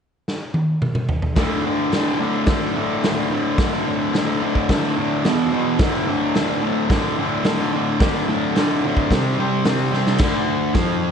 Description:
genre	garage rock duo or trio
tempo	109 BPM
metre	4/4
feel	straight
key	D minor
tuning	A4 = 440 Hz
part	raw garage drum kit	drums	0.3-10.9 s	crash cymbal, hi-hat, kick drum, snare drum, toms	-22 LUFS	equal	none
part	fuzz guitar	riff	1.4-11.1 s	D2 to C4	-19 LUFS	equal	distortion
room	little or no reverb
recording	nothing above 10.8 kHz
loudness	-17 LUFS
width	side -7 dB against mid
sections	0.0-1.4 A section; 1.4-10.2 B section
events	drum fill 0.3-1.4, 9.9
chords	0.0 N.C.; 1.4 D5; 5.2 E5; 5.8 D5; 9.1 C5; 10.2 Dm

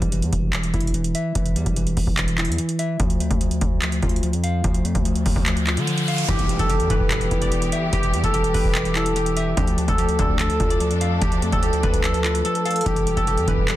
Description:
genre	hip hop, trap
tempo	146 BPM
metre	4/4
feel	half-time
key	E phrygian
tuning	A4 = 440 Hz
part	mellow electric guitar	accompaniment	0.0-13.8 s	E3 to F5	-26 LUFS	left 1 dB	low-pass filter
part	distorted 808-style bass	bass	0.0-13.8 s	E1 to D3	-24 LUFS	equal	distortion
part	booming analog drum machine	drums	0.0-13.8 s	handclaps, hi-hat, kick drum	-23 LUFS	equal	none
part	riser and impact	sound effects	5.2-7.9 s	none	-29 LUFS	equal	none
part	guzheng	melody	6.3-13.8 s	G4 to D5	-23 LUFS	equal	low-pass filter, ping-pong delay
part	warm symphonic string section	sustained chords	6.3-13.8 s	E3 to A4	-30 LUFS	left 1 dB	none
part	funky polysynth comp	stabs	6.3-13.8 s	A1 to E3	-28 LUFS	equal	chorus
room	little or no reverb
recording	dense, heavily limited modern master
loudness	-18 LUFS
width	side -14 dB against mid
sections	0.0-6.3 A section; 6.3-13.8 B section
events	riser 5.2-6.3; impact 6.3-7.9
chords	0.0 Em; 3.0 Dm; 6.3 Em; 9.6 Dm; 12.9 Em

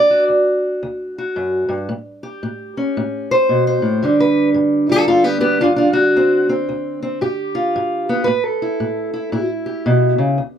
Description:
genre	acoustic country blues, solo or duo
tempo	113 BPM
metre	4/4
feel	swing 63% on 8ths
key	unclear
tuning	A4 = 440 Hz
part	fingerpicked steel-string acoustic guitar	solo	0.0-10.6 s	D2 to D5	-15 LUFS	equal	none
room	moderate booth ambience, RT60 0.2 s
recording	close, detailed microphones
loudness	-15 LUFS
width	side -8 dB against mid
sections	0.0-10.4 A section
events	steel-string acoustic guitar solo 0.0-10.4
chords	0.0 D; 1.9 A7; 4.0 G7; 6.1 D7; 7.2 G7; 8.3 A7(no3)

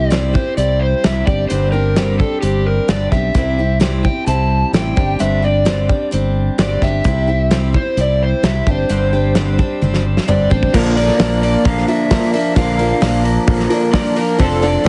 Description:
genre	folk rock and heartland rock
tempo	130 BPM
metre	4/4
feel	straight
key	unclear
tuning	A4 = 440 Hz
part	overdriven slide guitar	melody	0.0-14.9 s	G4 to A5	-22 LUFS	equal	none
part	picked steel-string acoustic guitar	accompaniment	0.0-14.9 s	G2 to Bb4	-23 LUFS	equal	none
part	modern bright fingered electric bass	bass	0.0-14.9 s	F1 to C2	-20 LUFS	equal	none
part	natural country drum kit	drums	0.1-14.9 s	crash cymbal, hi-hat, kick drum, snare drum, toms	-20 LUFS	equal	none
part	dark upright piano	accompaniment	10.7-14.9 s	F4 to D5	-27 LUFS	equal	none
part	mellow tonewheel organ	sustained chords	10.7-14.9 s	F4 to D6	-32 LUFS	equal	none
part	electric guitar through a small old amp	riff	10.7-14.9 s	Bb2 to Bb4	-20 LUFS	equal	spring reverb
room	light reverb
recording	heavily compressed radio sound, multiband compression, nothing above 10.5 kHz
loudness	-15 LUFS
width	mono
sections	0.0-10.7 A section; 10.7-14.9 B section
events	drum fill 9.8-10.7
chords	0.0 C; 1.3 Gsus4; 3.4 C; 5.0 Gsus4; 7.0 C; 8.7 Gsus4; 10.7 Bb

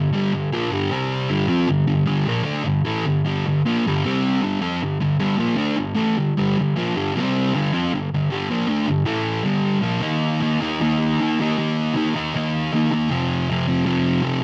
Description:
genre	rock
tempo	154 BPM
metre	4/4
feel	straight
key	G minor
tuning	A4 = 440 Hz
part	fuzz guitar	solo	0.0-14.4 s	F2 to F4	-21 LUFS	equal	distortion
room	light reverb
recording	none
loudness	-21 LUFS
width	mono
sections	0.0-10.0 A section; 10.0-14.4 B section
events	none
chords	0.0 Gm; 0.9 C5; 1.3 Gm; 4.0 C5; 4.4 Gm; 7.1 C5; 7.5 Gm; 9.1 A5; 9.5 Gm; 10.0 Eb5; 13.1 F5

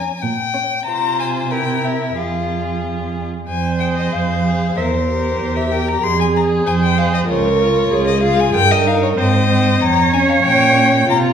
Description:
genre	quick classical-period movement for string quartet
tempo	94 BPM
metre	2/4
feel	straight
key	F minor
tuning	A4 = 435 Hz
part	rich violin	melody	0.0-11.2 s	C5 to C6	-19 LUFS	left 5 dB	none
part	warm violin	second line	0.0-11.3 s	C4 to Db5	-22 LUFS	left 2 dB	none
part	rich viola	accompaniment	0.0-11.3 s	Db4 to E5	-20 LUFS	right 3 dB	none
part	warm cello	bass	0.0-11.3 s	Db2 to C3	-19 LUFS	right 3 dB	none
room	wet recital hall reverb, RT60 1.4 s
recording	heard from further back in the room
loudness	-14 LUFS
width	side -8 dB against mid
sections	0.0-3.5 A section; 3.5-11.3 B section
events	none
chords	0.2 Gdim/Bb; 0.9 Fm/C; 1.5 C7; 2.2 Fm; 4.8 C7/E; 6.0 Fm; 7.3 Db; 8.5 Eb/G; 9.2 Ab; 9.8 Db/F; 10.4 Gdim/Bb

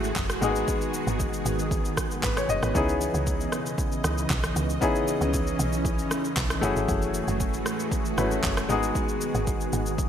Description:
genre	amapiano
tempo	116 BPM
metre	4/4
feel	straight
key	C# minor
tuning	A4 = 440 Hz
part	clear grand piano	accompaniment	0.0-10.1 s	G#3 to D#5	-29 LUFS	left 3 dB	none
part	string machine, cellos	sustained chords	0.0-10.1 s	C#3 to D#5	-30 LUFS	right 1 dB	ensemble chorus, sidechain pumping
part	woody log drum bass	bass	0.0-10.1 s	F#1 to C#2	-29 LUFS	right 1 dB	none
part	deep house drum kit	drums	0.0-10.1 s	handclaps, kick drum, rim click, shaker	-29 LUFS	equal	gated reverb
room	light reverb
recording	bright 1980s-style digital production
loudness	-24 LUFS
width	side -9 dB against mid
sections	0.0-10.1 A section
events	none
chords	0.4 G#m7; 2.7 C#m9; 6.6 F#m9; 8.7 G#m7

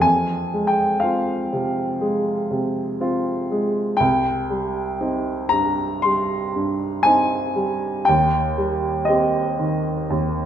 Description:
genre	classical, romantic nocturne for solo piano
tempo	60 BPM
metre	4/4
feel	rubato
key	C minor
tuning	A4 = 439 Hz
part	warm baby grand piano	solo	0.0-10.5 s	C2 to C6	-19 LUFS	equal	none
room	moderate recital hall reverb, RT60 1.5 s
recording	minimal, uncompressed stereo recording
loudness	-19 LUFS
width	side -9 dB against mid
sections	0.0-10.5 A section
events	none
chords	0.0 Fm; 4.0 Cm; 8.1 Cm/Eb

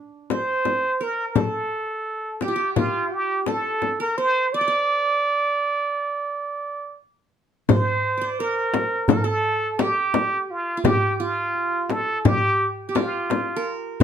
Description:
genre	Turkish makam ensemble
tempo	171 BPM (eighths)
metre	9/8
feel	straight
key	D minor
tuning	A4 = 437 Hz
part	qanun	second line	0.0-14.0 s	D4 to Eb5	-29 LUFS	right 3 dB	none
part	trumpet with plunger mute	melody	0.3-13.8 s	F4 to D5	-23 LUFS	right 2 dB	none
part	frame drum	percussion	0.3-14.0 s	none	-21 LUFS	left 6 dB	none
part	darbuka	percussion	7.7-14.0 s	none	-26 LUFS	right 4 dB	none
room	moderate studio reverb, RT60 0.5 s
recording	none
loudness	-20 LUFS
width	side -8 dB against mid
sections	0.0-7.7 A section; 7.7-14.0 B section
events	none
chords	none

